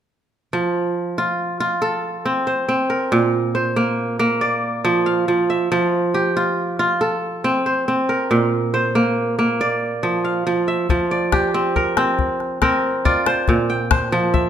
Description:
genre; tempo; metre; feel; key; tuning
west african traditional, West African string and xylophone music; 93 BPM (dotted quarters); 12/8; straight; F major; A4 = 441 Hz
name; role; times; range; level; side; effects
kora; arpeggios; 0.5-14.5 s; Bb2 to G5; -17 LUFS; right 1 dB; none
calabash; percussion; 10.9-14.4 s; none; -21 LUFS; left 5 dB; none
room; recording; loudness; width
moderate recital hall reverb, RT60 1.7 s; minimal, uncompressed stereo recording; -17 LUFS; side -9 dB against mid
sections
0.5-10.9 A section; 10.9-14.5 B section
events
none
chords
0.5 F; 3.1 Bb; 5.7 F; 8.3 Bb; 10.9 F5; 13.5 Bb

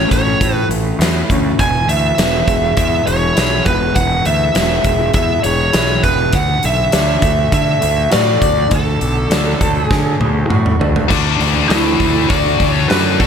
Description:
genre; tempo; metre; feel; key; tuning
quiet-loud alternative rock; 101 BPM; 4/4; straight; unclear; A4 = 441 Hz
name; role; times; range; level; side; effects
lead guitar through a small cranked amp; melody; 0.0-13.3 s; E4 to G#5; -17 LUFS; right 1 dB; overdrive
electric guitar through a small old amp; arpeggios; 0.0-13.3 s; A2 to F#4; -22 LUFS; left 2 dB; none
fuzz fingered electric bass; bass; 0.0-13.3 s; E1 to D3; -18 LUFS; equal; overdrive
big rock drum kit; drums; 0.1-13.3 s; crash cymbal, hi-hat, kick drum, snare drum, toms; -17 LUFS; equal; none
scooped high-gain guitar; riff; 11.1-13.3 s; D3 to F#4; -17 LUFS; left 14 dB; distortion
room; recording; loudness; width
little or no reverb; none; -12 LUFS; side -7 dB against mid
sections
0.0-11.1 A section; 11.1-13.3 B section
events
drum fill 9.9-11.1; lead electric guitar solo 11.1-13.3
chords
0.0 A; 1.6 E; 6.3 D; 11.1 Dadd9

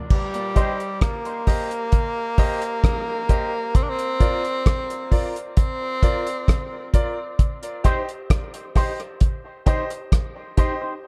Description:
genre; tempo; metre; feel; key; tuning
dub reggae; 66 BPM; 4/4; straight; C minor; A4 = 439 Hz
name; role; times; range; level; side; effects
bright tenor saxophone; melody; 0.1-6.9 s; G3 to D4; -29 LUFS; equal; dub echo
damped 70s drum kit; drums; 0.1-10.8 s; crash cymbal, hi-hat, kick drum, rim click; -21 LUFS; equal; none
electric guitar with an envelope filter; accompaniment; 0.6-0.7, 7.8-10.9 s; Eb4 to C5; -34 LUFS; equal; analog chorus, dub echo
bright grand piano; stabs; 0.6-10.8 s; F4 to Eb5; -33 LUFS; equal; dub echo
room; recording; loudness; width
light reverb, small room reverb; dark, warm production; -22 LUFS; mono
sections
0.1-11.1 A section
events
none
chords
0.1 Cm; 3.7 Bb; 7.4 Cm

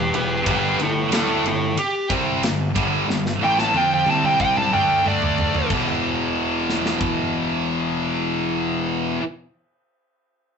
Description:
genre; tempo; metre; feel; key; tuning
heavy metal; 92 BPM; 4/4; straight; E phrygian; A4 = 443 Hz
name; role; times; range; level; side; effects
high-gain lead guitar; melody; 0.0-5.7 s; E4 to A5; -20 LUFS; right 1 dB; distortion
heavy high-gain guitar; riff; 0.0-9.2 s; E2 to F4; -25 LUFS; left 7 dB; distortion
high-gain distorted guitar; riff; 0.0-9.2 s; E2 to F4; -25 LUFS; right 6 dB; distortion
fuzz picked electric bass; bass; 0.0-9.0 s; E1 to F2; -29 LUFS; equal; overdrive
tight metal drum kit; drums; 0.1-7.2 s; crash cymbal, kick drum, ride cymbal, snare drum, toms; -26 LUFS; right 1 dB; none
room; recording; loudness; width
moderate studio reverb, RT60 0.5 s; rough rehearsal-room recording, nothing above 8.0 kHz; -18 LUFS; side -6 dB against mid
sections
0.0-5.7 A section; 5.7-8.3 B section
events
lead electric guitar solo 0.0-5.7; drum fill 3.1-5.7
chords
0.5 G5; 4.1 C5; 4.7 D5; 5.7 E5

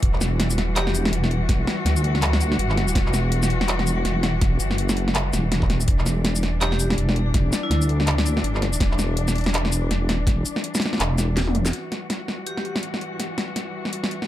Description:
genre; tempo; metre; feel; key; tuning
half-time drum and bass; 164 BPM; 4/4; swing 59% on 16ths, half-time; E minor; A4 = 440 Hz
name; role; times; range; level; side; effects
rich chamber cello section; sustained chords; 0.0-14.3 s; E3 to F#4; -28 LUFS; left 2 dB; sidechain pumping, low-pass filter
deep soft wobble bass; bass; 0.0-11.7 s; E1 to D2; -22 LUFS; equal; chorus
drum and bass drum kit; drums; 0.0-14.3 s; handclaps, hi-hat, shaker, snare drum, toms; -25 LUFS; equal; none
electronic kick drum; drums; 0.0-10.4 s; none; -21 LUFS; equal; none
vibraphone with hard mallets; melody; 0.8-0.9, 6.6-7.8, 12.5-12.6 s; E4 to G4; -32 LUFS; left 1 dB; vintage 12-bit sampler grit, digital delay
room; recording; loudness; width
digital ambience; none; -20 LUFS; side -13 dB against mid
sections
0.0-11.7 A section; 11.7-14.3 B section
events
drop 0.0-11.7; drum fill 11.4-11.7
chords
0.0 Emadd9

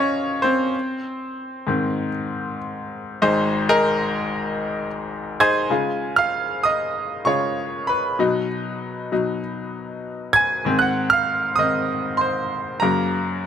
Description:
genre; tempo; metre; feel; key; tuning
pop; 97 BPM; 4/4; straight; unclear; A4 = 440 Hz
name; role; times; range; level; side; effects
bright grand piano; solo; 0.0-13.5 s; Ab1 to Ab6; -20 LUFS; equal; none
room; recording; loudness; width
light reverb; none; -19 LUFS; side -8 dB against mid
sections
0.0-3.2 A section; 3.2-5.7 B section; 5.7-13.5 C section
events
grand piano solo 0.0-3.2, 5.7-13.5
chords
0.0 Ebm; 0.7 Ab; 5.7 Db; 8.2 Cb; 10.7 Ab; 12.8 Gb

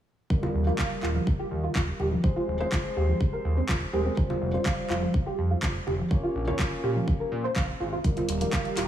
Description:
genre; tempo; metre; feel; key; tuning
progressive house; 124 BPM; 4/4; straight; unclear; A4 = 439 Hz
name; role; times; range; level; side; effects
felt-muted upright piano; stabs; 0.3-8.9 s; G3 to Db5; -32 LUFS; left 1 dB; sidechain pumping, tape echo
electronic kick drum; drums; 0.3-8.6 s; none; -27 LUFS; equal; studio reverb
soft round pluck; arpeggios; 0.4-8.9 s; F3 to F5; -31 LUFS; right 2 dB; ensemble chorus, sidechain pumping, tape echo
congas; percussion; 0.4-8.3 s; none; -36 LUFS; left 1 dB; sidechain pumping on perc
fat analog bass; bass; 0.5-8.9 s; Eb1 to Bb2; -28 LUFS; equal; sidechain pumping
house drum kit; drums; 0.8-8.9 s; handclaps, hi-hat; -34 LUFS; equal; studio reverb
warm analog pad; sustained chords; 8.4-8.9 s; Eb3 to Bb4; -34 LUFS; right 1 dB; chorus, sidechain pumping
room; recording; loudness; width
light reverb, digital ambience; small room ambience; -24 LUFS; side -11 dB against mid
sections
0.3-8.9 A section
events
none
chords
0.3 Eb; 2.2 Ab/Eb; 4.2 Fsus2; 6.1 Bbm; 8.0 Eb

